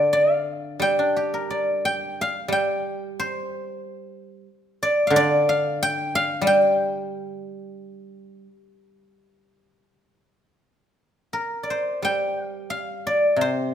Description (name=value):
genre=chinese traditional, Chinese solo plucked strings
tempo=81-93 BPM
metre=4/4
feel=rubato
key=G yu mode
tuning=A4 = 441 Hz
part: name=guzheng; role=solo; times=0.0-13.7 s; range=C3 to G5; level=-21 LUFS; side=equal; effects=none
room=light reverb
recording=minimal, uncompressed stereo recording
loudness=-20 LUFS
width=side -9 dB against mid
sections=0.0-10.6 A section; 10.6-13.7 B section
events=none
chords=none